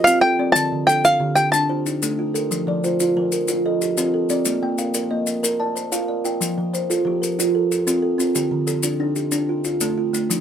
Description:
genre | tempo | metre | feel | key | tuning
southern african traditional, mbira-style interlocking cycle | 123 BPM (dotted quarters) | 12/8 | straight | F mixolydian | A4 = 440 Hz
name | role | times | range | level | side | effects
bluegrass banjo | melody | 0.0-1.9 s | F5 to A5 | -16 LUFS | equal | none
kalimba | arpeggios | 0.0-10.4 s | D3 to A5 | -22 LUFS | right 1 dB | none
kalimba | arpeggios | 0.1-10.4 s | D3 to F5 | -23 LUFS | right 1 dB | none
maracas | percussion | 0.1-10.4 s | none | -26 LUFS | left 5 dB | none
room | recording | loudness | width
little or no reverb | close, detailed microphones | -18 LUFS | side -9 dB against mid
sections
0.0-6.4 A section; 6.4-10.4 B section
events
none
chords
0.0 F; 0.6 Dm; 2.5 F; 4.5 Bb; 6.4 F; 8.4 Dm

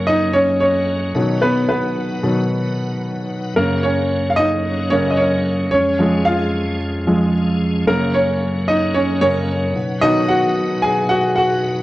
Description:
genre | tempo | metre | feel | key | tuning
piano-driven pop | 112 BPM | 4/4 | straight | F# major | A4 = 441 Hz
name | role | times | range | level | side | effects
clear baby grand piano | accompaniment | 0.0-11.8 s | E#2 to G#5 | -16 LUFS | equal | none
tonewheel organ | sustained chords | 0.0-11.8 s | E#2 to F#5 | -23 LUFS | equal | chorus vibrato, slow rotary speaker
room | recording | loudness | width
wet large studio reverb, RT60 0.9 s, studio ambience | worn, warbling old tape, cassette tape, warbly pitch drift | -15 LUFS | side -16 dB against mid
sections
0.0-11.8 A section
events
grand piano solo 0.0-11.8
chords
0.0 F#; 1.1 B; 3.6 F#; 5.7 C#/E#; 7.9 F#; 9.8 B

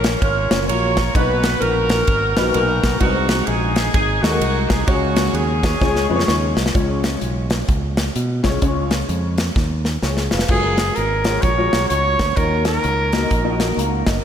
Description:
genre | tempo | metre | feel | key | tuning
uptempo gospel | 128 BPM | 4/4 | swing 62% on 8ths | unclear | A4 = 440 Hz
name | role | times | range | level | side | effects
clear saxophone section | melody | 0.0-6.6 s | A#3 to C#5 | -21 LUFS | right 1 dB | analog delay
modern bright fingered electric bass | bass | 0.0-14.2 s | E#1 to B2 | -22 LUFS | right 1 dB | none
modern studio drum kit | drums | 0.0-14.2 s | crash cymbal, hi-hat, kick drum, ride cymbal, snare drum | -21 LUFS | equal | none
warm concert grand piano | accompaniment | 0.5-14.2 s | A#2 to A#5 | -23 LUFS | left 3 dB | ensemble chorus
clear trumpet | melody | 10.5-13.6 s | G#4 to C#5 | -20 LUFS | right 1 dB | analog delay
room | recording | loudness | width
moderate lush hall reverb, RT60 2.5 s | dreamy mix soaked in reverb | -16 LUFS | side -9 dB against mid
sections
0.0-6.8 A section; 6.8-10.5 B section; 10.5-14.2 C section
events
drum fill 5.8-6.8, 9.6-10.5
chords
0.0 F#maj7; 1.1 Bmaj7; 3.0 G#7; 4.9 C#sus4; 5.8 C#; 10.5 F#maj9; 12.4 D#m7

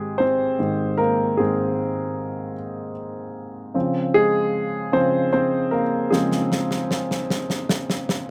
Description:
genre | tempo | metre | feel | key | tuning
six-eight pop ballad | 51 BPM (dotted quarters) | 6/8 | straight | unclear | A4 = 440 Hz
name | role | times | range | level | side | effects
warm concert grand piano | accompaniment | 0.0-8.3 s | Ab2 to C5 | -23 LUFS | equal | none
snare drum | drums | 6.1-8.3 s | none | -27 LUFS | equal | none
room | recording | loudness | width
little or no reverb | none | -22 LUFS | mono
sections
0.0-8.3 A section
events
grand piano solo 0.0-8.3; drum fill 6.1-8.3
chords
0.0 Ab; 3.7 Dbmaj7

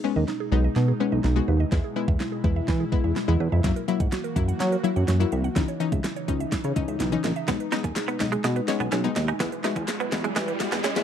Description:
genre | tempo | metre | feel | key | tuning
dance-pop | 125 BPM | 4/4 | straight | B major | A4 = 440 Hz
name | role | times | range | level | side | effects
analog pluck | accompaniment | 0.0-11.0 s | E3 to F#4 | -29 LUFS | left 8 dB | chorus, sidechain pumping
airy breathy pad | sustained chords | 0.1-11.0 s | B2 to F#4 | -33 LUFS | left 1 dB | chorus, sidechain pumping
mallet-like synth pluck | arpeggios | 0.0-11.0 s | D#4 to G#5 | -35 LUFS | right 12 dB | chorus, sidechain pumping, slapback echo
chorused synth bass | bass | 0.2-11.0 s | A#1 to F#3 | -24 LUFS | right 1 dB | sidechain pumping
pop drum kit | drums | 0.3-11.0 s | hi-hat, kick drum, snare drum | -28 LUFS | equal | none
direct-recorded clean electric guitar | riff | 7.5-10.9 s | G#3 to D#4 | -29 LUFS | right 5 dB | ensemble chorus
riser | sound effects | 9.0-11.0 s | none | -34 LUFS | right 1 dB | none
group handclap | percussion | 8.0-11.0 s | none | -37 LUFS | left 9 dB | none
room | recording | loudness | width
little or no reverb | dry, close 1970s-style studio recording, high-pass filter | -22 LUFS | side -9 dB against mid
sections
0.0-11.0 A section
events
build-up 0.0-11.0; drum fill 0.0-11.0; filter sweep 0.0-11.0; riser 9.0-11.0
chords
0.0 B6; 1.7 E; 3.6 F#7; 5.6 C#madd9; 7.5 B6; 9.4 E

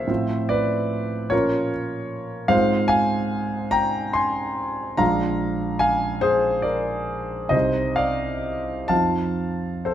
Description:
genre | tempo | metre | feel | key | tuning
classical, romantic nocturne for solo piano | 48 BPM (dotted quarters) | 6/8 | uneven beats, rubato | unclear | A4 = 441 Hz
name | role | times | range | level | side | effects
warm concert grand piano | solo | 0.0-9.9 s | Bb1 to C6 | -20 LUFS | equal | none
room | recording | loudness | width
moderate recital hall reverb, RT60 1.4 s | close, detailed microphones | -20 LUFS | side -10 dB against mid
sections
0.0-9.9 A section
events
none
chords
0.1 F/A; 1.3 Bbm; 2.5 Fm/Ab; 5.0 Bb7; 7.5 Cm; 8.9 F7

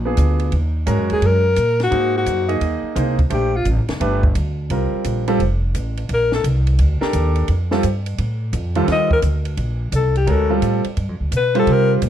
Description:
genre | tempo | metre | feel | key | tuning
jazz, small-group swing and bop | 172 BPM | 4/4 | swing 65% on 8ths | Bb major | A4 = 443 Hz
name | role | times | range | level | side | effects
upright bass | bass | 0.0-12.1 s | F1 to C3 | -19 LUFS | equal | none
bright grand piano | accompaniment | 0.1-12.0 s | Eb2 to Eb5 | -20 LUFS | right 2 dB | none
compact cocktail drum kit | drums | 0.2-12.1 s | hi-hat, kick drum, ride cymbal, snare drum | -25 LUFS | equal | none
clear alto saxophone | melody | 1.1-3.7, 6.1-6.4, 8.9-11.9 s | F4 to Eb5 | -19 LUFS | left 3 dB | plate reverb
room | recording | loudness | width
light reverb | none | -16 LUFS | side -10 dB against mid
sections
0.0-8.9 A section; 8.9-12.1 A section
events
alto saxophone solo 0.0-12.1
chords
0.0 Bb7b9; 0.5 Ebm7; 1.9 Ab9; 3.3 Bb69; 4.0 G; 4.7 C5; 5.4 F; 6.1 Bbmaj7; 10.3 Dm7; 11.0 G7

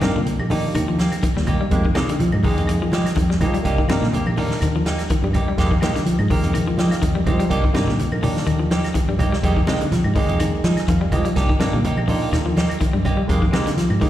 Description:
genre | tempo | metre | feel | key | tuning
afrobeat | 124 BPM | 4/4 | swing 55% on 16ths | C minor | A4 = 438 Hz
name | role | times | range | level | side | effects
barky tine electric piano | accompaniment | 0.0-14.1 s | Ab3 to Ab5 | -27 LUFS | right 2 dB | overdrive, slapback echo
electric guitar at the edge of break-up | arpeggios | 0.0-14.1 s | Bb2 to G3 | -25 LUFS | left 5 dB | slapback echo
semi-hollow electric guitar | stabs | 0.0-14.1 s | Ab3 to G4 | -27 LUFS | right 4 dB | slapback echo
fingered electric bass | bass | 0.0-14.0 s | C2 to F3 | -21 LUFS | equal | none
vintage drum kit | drums | 0.0-14.1 s | hi-hat, kick drum, snare drum | -23 LUFS | equal | none
claves | percussion | 0.0-14.0 s | none | -37 LUFS | left 1 dB | slapback echo
congas | percussion | 0.0-14.1 s | none | -25 LUFS | right 1 dB | slapback echo
room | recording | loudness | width
small room ambience | live gig heard through the venue's PA, recital hall reverb | -17 LUFS | side -12 dB against mid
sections
0.0-14.1 A section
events
tine electric piano fill 6.5-7.5, 10.4-11.4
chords
0.0 Cm7 (rootless); 1.7 Fm11; 3.6 Cm7; 5.6 Fm11; 7.5 Cm7; 9.4 Fm11; 11.4 Cm7; 13.3 Fm11

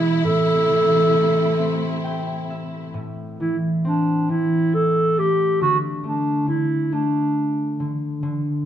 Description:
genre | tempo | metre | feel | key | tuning
children's music, lullaby | 45 BPM (dotted quarters) | 6/8 | rubato | A minor | A4 = 439 Hz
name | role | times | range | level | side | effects
dark clarinet | melody | 0.0-7.9 s | D4 to A4 | -20 LUFS | right 1 dB | none
concert harp | accompaniment | 0.0-8.7 s | A2 to G5 | -23 LUFS | equal | none
warm symphonic string section | sustained chords | 0.0-2.9 s | B2 to E4 | -26 LUFS | left 1 dB | none
room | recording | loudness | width
light reverb | minimal, uncompressed stereo recording | -18 LUFS | side -10 dB against mid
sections
0.0-2.9 A section; 2.9-8.7 B section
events
harp fill 1.6-2.9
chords
0.2 Am; 5.6 D5

